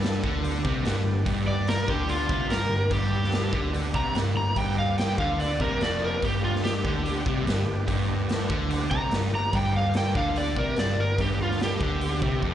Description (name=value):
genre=blues rock power trio and southern rock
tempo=145 BPM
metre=4/4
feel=straight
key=G mixolydian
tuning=A4 = 440 Hz
part: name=overdriven tonewheel organ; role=sustained chords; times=0.0-12.5 s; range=G3 to A4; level=-38 LUFS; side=right 3 dB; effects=slow rotary speaker
part: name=fuzz guitar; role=riff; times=0.0-12.5 s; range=F2 to D3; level=-29 LUFS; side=left 1 dB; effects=distortion, slapback echo
part: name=vintage muted picked electric bass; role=bass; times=0.0-12.5 s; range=F1 to D2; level=-29 LUFS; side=equal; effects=none
part: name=raw garage drum kit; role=drums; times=0.0-12.5 s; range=hi-hat, kick drum, snare drum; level=-29 LUFS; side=equal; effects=none
part: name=overdriven slide guitar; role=melody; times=1.5-12.5 s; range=F4 to Bb5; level=-29 LUFS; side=right 1 dB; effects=slapback echo
room=little or no reverb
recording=live gig heard through the venue's PA, club reverb, nothing above 10.9 kHz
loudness=-23 LUFS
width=side -11 dB against mid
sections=0.0-12.5 A section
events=none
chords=0.0 G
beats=0.03 0.44 0.85 | 1.26 1.68 2.09 2.50 | 2.91 3.33 3.74 4.15 | 4.56 4.98 5.39 5.80 | 6.22 6.63 7.05 7.46 | 7.88 8.29 8.70 9.12 | 9.53 9.95 10.36 10.78 | 11.19 11.60 12.02 12.43